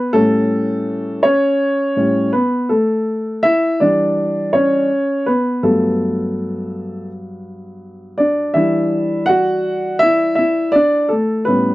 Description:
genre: hip hop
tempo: 82 BPM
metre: 4/4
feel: swing 64% on 16ths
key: E dorian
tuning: A4 = 440 Hz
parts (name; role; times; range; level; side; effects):
- dark upright piano; solo; 0.0-11.7 s; G2 to F#5; -14 LUFS; equal; none
room: little or no reverb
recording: dry, close 1970s-style studio recording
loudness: -14 LUFS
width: side -18 dB against mid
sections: 0.0-11.7 A section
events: upright piano solo 0.0-11.7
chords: 0.0 A9; 2.7 Em7; 5.3 Gmaj9; 8.6 Em11

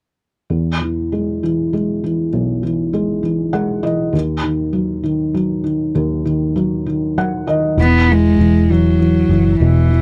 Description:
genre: six-eight pop ballad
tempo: 66 BPM (dotted quarters)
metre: 6/8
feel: straight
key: unclear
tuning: A4 = 440 Hz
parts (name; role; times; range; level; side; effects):
- felt-muted upright piano; accompaniment; 0.5-10.0 s; B1 to F#5; -19 LUFS; equal; none
- dark cello; melody; 7.8-10.0 s; E3 to B3; -17 LUFS; equal; none
- vintage muted fingered electric bass; bass; 7.8-10.0 s; E1 to F#1; -17 LUFS; equal; none
room: light reverb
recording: dry, close 1970s-style studio recording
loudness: -17 LUFS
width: mono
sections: 0.5-7.8 A section; 7.8-10.0 B section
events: felt piano fill 3.2-4.1, 6.9-7.8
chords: 0.5 E; 4.1 D#m; 7.8 Eadd9

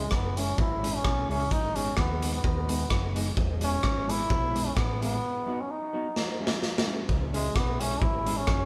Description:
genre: ska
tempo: 129 BPM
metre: 4/4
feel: swing 53% on 8ths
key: C# minor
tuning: A4 = 440 Hz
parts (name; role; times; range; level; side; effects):
- brilliant trombone; melody; 0.0-8.7 s; G#3 to E4; -33 LUFS; equal; none
- hollow-body jazz guitar; accompaniment; 0.0-8.4 s; F#3 to G#4; -38 LUFS; equal; dub echo
- hollow-body short-scale fingered electric bass; bass; 0.0-8.7 s; E1 to D#2; -34 LUFS; equal; tube saturation
- raw garage drum kit; drums; 0.1-8.6 s; hi-hat, kick drum, rim click, snare drum; -31 LUFS; equal; none
room: moderate large studio reverb, RT60 1.0 s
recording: band playing live in one room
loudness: -28 LUFS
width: mono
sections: 0.0-7.1 A section; 7.1-8.7 A section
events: break 5.2-7.1; drum fill 6.2-7.1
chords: 0.0 C#m; 1.5 G#m; 3.4 E; 5.2 B; 6.2 C#m

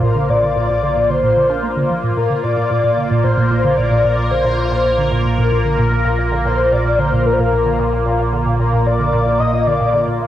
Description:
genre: ambient, sequencer-driven space music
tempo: 112 BPM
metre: 4/4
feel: straight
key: unclear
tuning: A4 = 439 Hz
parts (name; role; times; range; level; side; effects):
- breathy flute-like synth lead; melody; 0.0-10.2 s; Bb4 to Eb5; -18 LUFS; left 3 dB; ensemble chorus, cassette tape, tape echo
- sweeping resonant pad; sustained chords; 0.0-10.3 s; Bb3 to C5; -20 LUFS; right 2 dB; chorus
- resonant blip pluck; riff; 0.0-10.3 s; Bb2 to D4; -18 LUFS; right 1 dB; phaser, cassette tape, tape echo
- round analog bass; bass; 0.0-10.3 s; Bb1; -24 LUFS; right 2 dB; tube saturation
room: wet spring reverb, RT60 1.2 s, digital ambience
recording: home recording on cassette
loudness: -13 LUFS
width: side -12 dB against mid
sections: 0.0-10.3 A section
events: filter sweep on synth arpeggio sound 0.0-10.3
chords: 0.0 Bbadd9

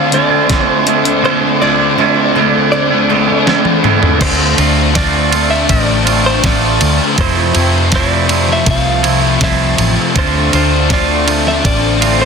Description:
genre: rock, shoegaze and dream pop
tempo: 81 BPM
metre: 4/4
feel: straight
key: D minor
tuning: A4 = 440 Hz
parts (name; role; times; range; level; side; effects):
- direct-recorded clean electric guitar; melody; 0.0-12.3 s; C5 to F5; -19 LUFS; equal; spring reverb, slapback echo
- string machine, full ensemble; sustained chords; 0.0-12.3 s; C5 to A5; -23 LUFS; left 1 dB; ensemble chorus
- picked twelve-string acoustic guitar; arpeggios; 0.0-4.2, 10.2-12.3 s; A3 to F4; -22 LUFS; left 10 dB; analog chorus, slapback echo
- thick fuzz guitar; riff; 0.0-12.3 s; F2 to D4; -16 LUFS; left 13 dB; distortion, ensemble chorus
- twangy electric guitar; riff; 0.0-12.3 s; D3 to F4; -15 LUFS; right 13 dB; reverse reverb
- vintage muted fingered electric bass; bass; 0.0-12.3 s; A1 to D3; -17 LUFS; equal; none
- detuned 8-bit digital drum machine; drums; 0.1-12.2 s; crash cymbal, hi-hat, kick drum, ride cymbal, snare drum, toms; -16 LUFS; equal; none
room: light reverb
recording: dense, heavily limited modern master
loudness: -10 LUFS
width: side -5 dB against mid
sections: 0.0-4.2 A section; 4.2-12.3 B section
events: drum fill 3.5-4.2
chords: 0.0 Dm7; 7.2 Fmaj7; 10.2 Dm7

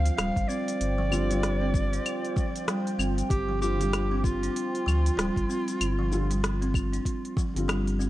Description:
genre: organic downtempo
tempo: 96 BPM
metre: 4/4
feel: swing 60% on 16ths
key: unclear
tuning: A4 = 440 Hz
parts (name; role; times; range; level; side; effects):
- breathy clarinet; melody; 0.0-7.7 s; F4 to F5; -32 LUFS; right 1 dB; tape echo
- felt-muted upright piano; accompaniment; 0.0-8.1 s; D3 to F4; -36 LUFS; left 2 dB; sidechain pumping, tape echo
- warbly tape-like pad; sustained chords; 0.0-8.1 s; F4 to G5; -38 LUFS; right 1 dB; chorus, built-in reverb, sidechain pumping
- warm sub bass; bass; 0.0-8.1 s; D1 to D2; -28 LUFS; equal; none
- organic electronic drum kit; drums; 0.1-8.1 s; claves, hi-hat, rim click, shaker; -33 LUFS; left 1 dB; none
- buzzing kalimba; arpeggios; 0.2-8.1 s; F3 to D4; -32 LUFS; right 1 dB; tape echo
- electronic kick drum; drums; 0.4-7.5 s; none; -28 LUFS; equal; none
room: light reverb, studio reverb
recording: none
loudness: -25 LUFS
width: side -15 dB against mid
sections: 0.0-8.1 A section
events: kick drops out 7.7-8.1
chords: 0.0 G7sus4

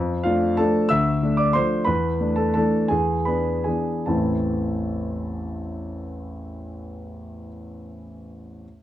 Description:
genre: classical, piano waltz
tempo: 140-193 BPM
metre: 3/4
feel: rubato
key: A minor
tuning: A4 = 441 Hz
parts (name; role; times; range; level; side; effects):
- warm grand piano; solo; 0.0-8.7 s; A1 to E6; -22 LUFS; equal; none
room: light reverb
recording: dark, warm production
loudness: -20 LUFS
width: side -12 dB against mid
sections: 0.0-4.1 A section; 4.1-6.5 B section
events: slowing down 1.4-4.1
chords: 0.0 Dm/F; 0.9 Dm; 1.9 E7sus4; 2.9 E7; 4.1 Am

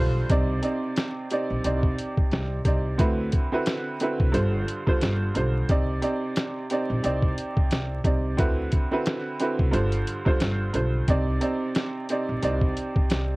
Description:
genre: hip hop, boom-bap hip-hop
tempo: 89 BPM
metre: 4/4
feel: swing 57% on 16ths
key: C harmonic minor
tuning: A4 = 439 Hz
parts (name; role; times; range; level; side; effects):
- bright upright piano; accompaniment; 0.0-13.4 s; G2 to D5; -26 LUFS; right 2 dB; high-pass filter, low-pass filter
- upright bass; bass; 0.0-13.4 s; G1 to D2; -27 LUFS; equal; none
- boom bap sampler-style drum kit; drums; 0.3-13.3 s; hi-hat, kick drum, snare drum; -24 LUFS; equal; vintage 12-bit sampler grit
room: little or no reverb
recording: worn, warbling old tape, cassette tape, vinyl crackle, warbly pitch drift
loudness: -22 LUFS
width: side -22 dB against mid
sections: 0.3-13.4 A section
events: none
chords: 0.3 Cmadd9; 3.0 D13; 4.3 G7sus4; 5.7 Cmadd9; 8.4 D13; 9.7 G7sus4; 11.1 Cmadd9

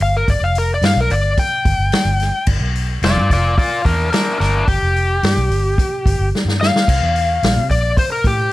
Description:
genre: blues rock power trio and southern rock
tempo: 109 BPM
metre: 4/4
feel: straight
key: unclear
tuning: A4 = 439 Hz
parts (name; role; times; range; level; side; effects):
- overdriven slide guitar; melody; 0.0-8.5 s; D4 to G5; -18 LUFS; left 2 dB; none
- vintage muted fingered electric bass; bass; 0.0-8.5 s; F1 to C3; -18 LUFS; equal; none
- vintage drum kit; drums; 0.0-8.4 s; crash cymbal, hi-hat, kick drum, snare drum, splash cymbal; -19 LUFS; equal; none
room: small room ambience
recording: none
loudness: -14 LUFS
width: side -17 dB against mid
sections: 0.0-8.5 A section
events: electric slide guitar solo 0.0-8.5; drum fill 6.3-6.9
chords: 0.0 G7(no3); 6.9 C7

